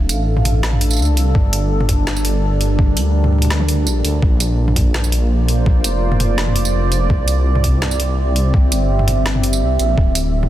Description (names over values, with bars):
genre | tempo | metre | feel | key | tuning
half-time drum and bass | 167 BPM | 4/4 | half-time | unclear | A4 = 440 Hz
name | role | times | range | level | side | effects
deep dark ambient pad | sustained chords | 0.0-10.5 s | G3 to F5 | -21 LUFS | right 1 dB | chorus, built-in reverb, sidechain pumping
dark detuned saw bass | bass | 0.0-10.5 s | D1 to D2 | -16 LUFS | equal | none
drum and bass drum kit | drums | 0.1-10.5 s | hi-hat, snare drum, tambourine, toms | -22 LUFS | right 1 dB | overdrive, studio reverb
electronic kick drum | drums | 1.4-10.1 s | none | -15 LUFS | equal | overdrive, studio reverb
room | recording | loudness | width
digital ambience | dense, heavily limited modern master | -14 LUFS | side -13 dB against mid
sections
0.0-10.5 A section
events
kick drops out 9.6-10.0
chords
0.0 Dm; 1.4 Gm7; 4.2 Bbadd9; 7.1 C; 10.0 Dm